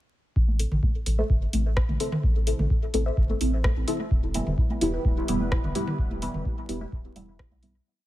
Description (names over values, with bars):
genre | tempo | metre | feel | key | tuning
dub techno | 128 BPM | 4/4 | straight | A minor | A4 = 437 Hz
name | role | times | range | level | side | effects
soft dub sub bass | bass | 0.4-7.8 s | D1 to B1 | -28 LUFS | equal | sidechain pumping
electronic kick drum | drums | 0.4-7.5 s | none | -25 LUFS | equal | none
electronic congas and toms | percussion | 0.5-7.6 s | none | -33 LUFS | equal | sidechain pumping on perc, sidechain pumping on toms, dub echo
deep mellow chord stab | stabs | 0.6-7.7 s | G3 to A4 | -30 LUFS | equal | chorus, phaser, dub echo
deep house drum kit | drums | 0.6-7.7 s | hi-hat, rim click | -33 LUFS | equal | overdrive, dub echo
filtered dub chord stab | riff | 1.2-6.9 s | E4 to E5 | -37 LUFS | equal | phaser, lush chorus, sidechain pumping, dub echo
dark analog pad | sustained chords | 4.6-7.8 s | G3 to B4 | -37 LUFS | left 1 dB | chorus, sidechain pumping
room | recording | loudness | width
little or no reverb | vinyl crackle | -23 LUFS | side -15 dB against mid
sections
0.4-7.9 groove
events
fade-out 5.4-7.9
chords
0.4 Am; 4.1 Em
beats
| 0.36 0.83 1.30 1.77 | 2.24 2.71 3.17 3.64 | 4.11 4.58 5.05 5.52 | 5.99 6.46 6.92 7.39